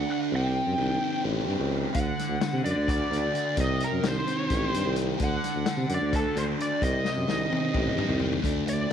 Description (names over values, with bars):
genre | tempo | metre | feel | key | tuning
psychedelic rock | 259 BPM (eighths) | 7/8 | straight | unclear | A4 = 439 Hz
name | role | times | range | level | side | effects
dark smooth lead guitar | melody | 0.0-8.9 s | A4 to G5 | -31 LUFS | equal | wah, overdrive, slapback echo
fuzz guitar | riff | 0.0-8.9 s | C3 to G4 | -29 LUFS | right 1 dB | distortion, phaser
warm tuba | bass | 0.0-8.9 s | A1 to C3 | -29 LUFS | equal | none
vintage drum kit | drums | 1.9-8.9 s | hi-hat, kick drum, snare drum, toms | -31 LUFS | left 3 dB | none
room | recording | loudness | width
light reverb, studio reverb | 1960s-style stereo | -24 LUFS | side -8 dB against mid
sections
0.0-8.4 A section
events
drum fill 7.0-8.4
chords
0.3 Cm; 1.9 D; 3.6 Cm; 5.2 D; 6.8 Cm